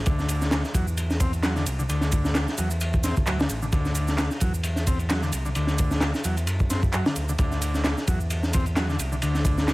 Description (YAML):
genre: breakbeat, breaks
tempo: 131 BPM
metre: 4/4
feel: swing 56% on 16ths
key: unclear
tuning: A4 = 440 Hz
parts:
  - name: combo organ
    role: riff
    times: 0.1-9.7 s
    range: D3 to C4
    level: -29 LUFS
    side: left 1 dB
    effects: vintage 12-bit sampler grit, tape echo
  - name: overdriven fingered electric bass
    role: bass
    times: 0.1-9.7 s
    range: A1 to F#2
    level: -27 LUFS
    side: equal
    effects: none
  - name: crunchy breakbeat drum kit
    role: drums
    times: 0.1-9.7 s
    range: kick drum, ride cymbal, snare drum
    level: -25 LUFS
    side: equal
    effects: none
  - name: punchy analog drum machine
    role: drums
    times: 0.1-9.7 s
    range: handclaps, ride cymbal, shaker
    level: -34 LUFS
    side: right 2 dB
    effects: none
room: studio reverb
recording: none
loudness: -22 LUFS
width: side -20 dB against mid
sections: 0.0-9.7 A section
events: none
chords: 0.0 D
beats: | 0.06 0.52 0.98 1.44 | 1.89 2.35 2.81 3.27 | 3.73 4.18 4.64 5.10 | 5.56 6.02 6.47 6.93 | 7.39 7.85 8.31 8.77 | 9.22 9.68